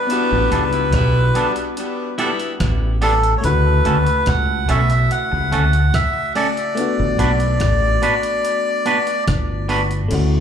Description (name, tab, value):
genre	lovers rock reggae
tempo	72 BPM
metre	4/4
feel	straight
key	unclear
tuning	A4 = 440 Hz
part	melodica	melody	0.0-9.2 s	A4 to F#5	-20 LUFS	left 1 dB	tape echo, plate reverb, slapback echo
part	FM electric piano	accompaniment	0.0-10.4 s	C#3 to F#4	-25 LUFS	left 4 dB	chorus, dub echo, plate reverb, slapback echo
part	clear saxophone section	second line	0.1-2.5 s	G3 to E4	-26 LUFS	left 1 dB	dub echo, plate reverb, slapback echo
part	gated 80s digital drum machine	drums	0.1-10.3 s	crash cymbal, hi-hat, kick drum, rim click	-26 LUFS	equal	overdrive, dub echo
part	deep dub fingered electric bass	bass	0.3-10.4 s	G1 to D2	-17 LUFS	equal	none
part	twangy electric guitar	stabs	0.5-9.8 s	G3 to B4	-24 LUFS	right 4 dB	spring reverb, plate reverb, slapback echo
room	light reverb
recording	live gig heard through the venue's PA, club reverb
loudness	-15 LUFS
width	side -8 dB against mid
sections	0.0-10.1 A section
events	none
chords	0.0 A9sus4; 3.4 Dmaj7; 6.8 Gmaj7